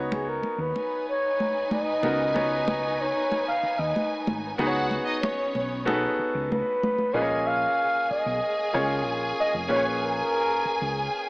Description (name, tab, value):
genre	lush 1970s-style soul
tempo	94 BPM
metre	4/4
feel	straight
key	unclear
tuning	A4 = 441 Hz
part	bright concert grand piano	accompaniment	0.0-11.3 s	A#3 to C#5	-29 LUFS	equal	none
part	hollow-body short-scale fingered electric bass	bass	0.0-11.1 s	E#1 to D#2	-34 LUFS	equal	none
part	breathy flugelhorn	melody	0.1-10.9 s	G#4 to E#5	-26 LUFS	equal	tape echo
part	congas	percussion	0.1-7.1 s	none	-30 LUFS	equal	none
part	rich studio violin section	second line	0.8-11.3 s	C#4 to G#5	-30 LUFS	equal	none
room	light reverb, studio reverb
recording	AM radio sound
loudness	-23 LUFS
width	side -28 dB against mid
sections	0.0-4.6 A section; 4.6-7.1 B section; 7.1-11.3 C section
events	flugelhorn solo 0.0-4.6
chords	0.0 C#9sus4; 7.1 A#m7